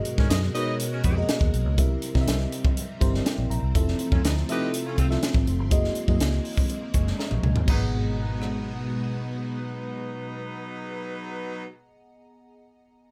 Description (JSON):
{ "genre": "polished 1980s jazz-funk pop", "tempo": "122 BPM", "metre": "4/4", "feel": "straight", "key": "unclear", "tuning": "A4 = 440 Hz", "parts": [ { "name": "FM electric piano with soft pad layer", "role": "accompaniment", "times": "0.0-13.1 s", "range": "A#3 to C#6", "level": "-35 LUFS", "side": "equal", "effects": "subtle chorus" }, { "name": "string machine, violins", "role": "sustained chords", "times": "0.0-11.6 s", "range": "B2 to A#4", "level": "-35 LUFS", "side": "equal", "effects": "ensemble chorus" }, { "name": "crisp fusion drum kit", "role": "drums", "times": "0.1-8.5 s", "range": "crash cymbal, hi-hat, kick drum, rim click, snare drum, toms", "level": "-27 LUFS", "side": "equal", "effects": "none" }, { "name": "warm horn section", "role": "second line", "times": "0.2-1.1, 4.1-11.7 s", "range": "F#3 to D#5", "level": "-36 LUFS", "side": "equal", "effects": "none" }, { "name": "vintage muted fingered electric bass", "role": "bass", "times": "0.2-11.6 s", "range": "F1 to C3", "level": "-28 LUFS", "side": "equal", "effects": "none" } ], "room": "light reverb", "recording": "none", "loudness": "-25 LUFS", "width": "mono", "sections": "0.0-7.7 A section; 7.7-11.6 B section", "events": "drum fill 7.2-7.7", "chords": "0.0 G#m9; 1.8 C7; 3.7 Fmaj7; 5.7 F#13; 7.7 G#m9" }